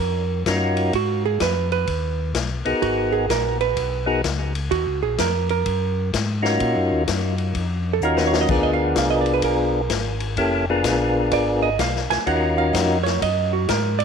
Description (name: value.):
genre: soul jazz organ trio.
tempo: 127 BPM.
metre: 4/4.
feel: swing 66% on 8ths.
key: Eb minor.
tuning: A4 = 444 Hz.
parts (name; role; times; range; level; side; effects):
hollow-body jazz guitar; accompaniment; 0.0-14.0 s; Gb4 to Ab5; -23 LUFS; right 14 dB; none.
mellow tonewheel organ; bass; 0.0-14.0 s; F1 to Bb2; -24 LUFS; left 1 dB; overdrive, chorus vibrato, slow rotary speaker.
percussive tonewheel organ; melody; 0.5-13.0 s; Bb3 to Bb4; -22 LUFS; left 2 dB; slow rotary speaker, tape echo.
vintage drum kit; drums; 0.5-14.0 s; crash cymbal, hi-hat, kick drum, ride cymbal, snare drum; -27 LUFS; left 7 dB; none.
room: light reverb, small room ambience.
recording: 1960s-style stereo with parts hard left and right.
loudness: -19 LUFS.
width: side -6 dB against mid.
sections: 0.0-14.0 A section.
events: hollow-body jazz guitar solo 0.0-14.0; drum fill 8.0-8.5.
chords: 0.0 Ebm7; 0.9 Abm7; 4.7 Ebm7; 8.5 Bb7b9; 12.3 Ebm7.